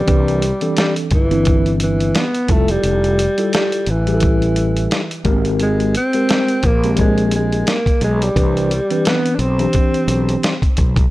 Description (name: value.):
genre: hip hop, jazz-hop.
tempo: 87 BPM.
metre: 4/4.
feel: swing 59% on 16ths.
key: C major.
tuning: A4 = 440 Hz.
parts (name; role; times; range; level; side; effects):
dark alto saxophone; melody; 0.0-10.8 s; E3 to D4; -19 LUFS; equal; none.
mellow tine electric piano; accompaniment; 0.1-10.5 s; E3 to B4; -21 LUFS; equal; medium stereo tremolo.
fretless electric bass; bass; 0.1-11.0 s; F1 to C2; -19 LUFS; equal; none.
dusty soul sampler-style drum kit; drums; 0.1-11.1 s; hi-hat, kick drum, snare drum; -18 LUFS; equal; none.
room: digital ambience.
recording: dry, gritty hardware recording.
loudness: -14 LUFS.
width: side -17 dB against mid.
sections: 0.1-11.1 A section.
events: none.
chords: 0.1 Cmaj9; 2.5 Fmaj9; 5.3 Abmaj9; 8.4 Cmaj9.